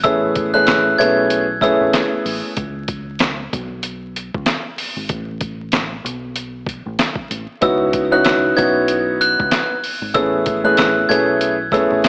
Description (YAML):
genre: hip hop, boom-bap hip-hop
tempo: 95 BPM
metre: 4/4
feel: swing 58% on 16ths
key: unclear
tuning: A4 = 441 Hz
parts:
  - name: glockenspiel with brass mallets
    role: melody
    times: 0.0-2.1, 7.6-12.1 s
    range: E6 to G#6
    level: -22 LUFS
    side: equal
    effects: digital delay
  - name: warm upright piano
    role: accompaniment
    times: 0.0-2.5, 7.6-12.1 s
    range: A3 to G#4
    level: -19 LUFS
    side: equal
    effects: cassette tape
  - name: deep dub fingered electric bass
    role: bass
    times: 0.0-12.0 s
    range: G#1 to C#2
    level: -32 LUFS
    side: equal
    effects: none
  - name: trip hop sampler-style drum kit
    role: drums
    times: 0.0-12.1 s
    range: handclaps, hi-hat, kick drum, snare drum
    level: -23 LUFS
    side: equal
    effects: none
room: light reverb, digital ambience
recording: vinyl crackle, AM radio sound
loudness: -18 LUFS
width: mono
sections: 0.0-12.1 A section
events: break 2.6-7.6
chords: 0.0 Amaj9; 2.6 C#5; 5.1 Asus2; 7.6 C#m11; 10.1 Amaj9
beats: | 0.04 0.68 1.31 1.94 | 2.57 3.20 3.83 4.46 | 5.10 5.73 6.36 6.99 | 7.62 8.25 8.88 9.52 | 10.15 10.78 11.41 12.04